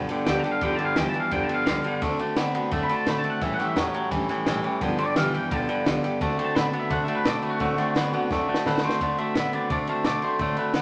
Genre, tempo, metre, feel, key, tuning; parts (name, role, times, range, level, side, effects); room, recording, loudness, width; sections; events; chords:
rockabilly; 172 BPM; 4/4; straight; D mixolydian; A4 = 440 Hz
picked steel-string acoustic guitar; accompaniment; 0.0-10.8 s; G2 to G4; -32 LUFS; equal
twangy electric guitar; riff; 0.0-10.8 s; G2 to B3; -29 LUFS; equal
upright bass; bass; 0.0-10.8 s; F1 to C3; -40 LUFS; equal
compact cocktail drum kit; drums; 0.1-10.8 s; kick drum, ride cymbal, snare drum; -32 LUFS; equal
twangy electric guitar; melody; 0.3-10.8 s; F#4 to B5; -31 LUFS; equal; spring reverb
moderate studio reverb, RT60 0.7 s; -25 LUFS; mono
0.0-9.0 A section; 9.0-10.8 B section
clean electric guitar solo 0.0-9.0; drum fill 8.3-9.0
0.0 G7; 2.0 D7; 3.4 A7; 4.8 G7; 6.2 D7